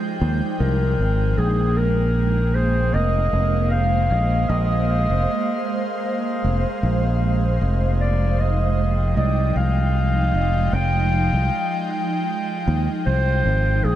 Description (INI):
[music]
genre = ambient dub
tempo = 77 BPM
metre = 4/4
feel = swing 55% on 16ths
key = F minor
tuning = A4 = 440 Hz
[part]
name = airy breathy pad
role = sustained chords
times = 0.0-14.0 s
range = F3 to G5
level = -25 LUFS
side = right 1 dB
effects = chorus
[part]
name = fingered electric bass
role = bass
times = 0.2-14.0 s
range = F1 to Eb2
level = -19 LUFS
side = equal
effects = none
[part]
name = mellow clarinet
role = melody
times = 0.6-14.0 s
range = Ab4 to G5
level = -25 LUFS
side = equal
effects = dub echo
[sound]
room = light reverb, small room ambience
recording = echo-heavy mix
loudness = -18 LUFS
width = side -12 dB against mid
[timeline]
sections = 0.0-14.0 A section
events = none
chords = 0.0 Fm9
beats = 0.60 | 1.38 2.16 2.94 3.72 | 4.50 5.28 6.05 6.83 | 7.61 8.39 9.17 9.95 | 10.73 11.51 12.29 13.07 | 13.85